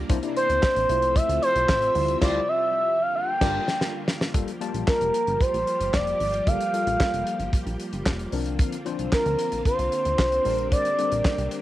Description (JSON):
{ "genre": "early-eighties boogie funk", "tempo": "113 BPM", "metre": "4/4", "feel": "straight", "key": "G dorian", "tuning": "A4 = 440 Hz", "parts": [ { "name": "string machine, violins", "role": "sustained chords", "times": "0.0-11.6 s", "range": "C3 to E5", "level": "-34 LUFS", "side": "right 1 dB", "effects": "ensemble chorus, cassette tape" }, { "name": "plucky analog bass", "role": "bass", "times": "0.0-11.5 s", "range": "F1 to D2", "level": "-30 LUFS", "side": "equal", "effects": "none" }, { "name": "tine electric piano", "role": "accompaniment", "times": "0.1-11.6 s", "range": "F3 to A5", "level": "-31 LUFS", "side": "left 8 dB", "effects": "cassette tape" }, { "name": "damped 70s drum kit", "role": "drums", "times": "0.1-11.6 s", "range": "crash cymbal, handclaps, hi-hat, kick drum, snare drum", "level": "-25 LUFS", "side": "equal", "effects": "cassette tape" }, { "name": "expressive portamento lead", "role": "melody", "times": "0.4-11.5 s", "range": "Bb4 to G5", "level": "-23 LUFS", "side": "right 1 dB", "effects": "chorus, cassette tape" }, { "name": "warm horn section", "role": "second line", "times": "2.2-3.5 s", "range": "A3 to D5", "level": "-42 LUFS", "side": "right 8 dB", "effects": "none" } ], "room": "light reverb, small room reverb", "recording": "home recording on cassette", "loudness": "-21 LUFS", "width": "side -15 dB against mid", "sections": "0.0-4.3 A section; 4.3-11.6 B section", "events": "band accent 2.2-4.3; drum fill 3.3-4.3", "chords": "0.1 C9; 0.9 Fmaj7/C; 2.0 Dm11; 3.0 Gm7; 4.3 Gm9; 8.3 C9sus4; 10.5 Bb69", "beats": "| 0.10 0.63 1.16 1.69 | 2.22 2.75 3.28 3.81 | 4.34 4.88 5.41 5.94 | 6.47 7.00 7.53 8.06 | 8.59 9.12 9.65 10.19 | 10.72 11.25" }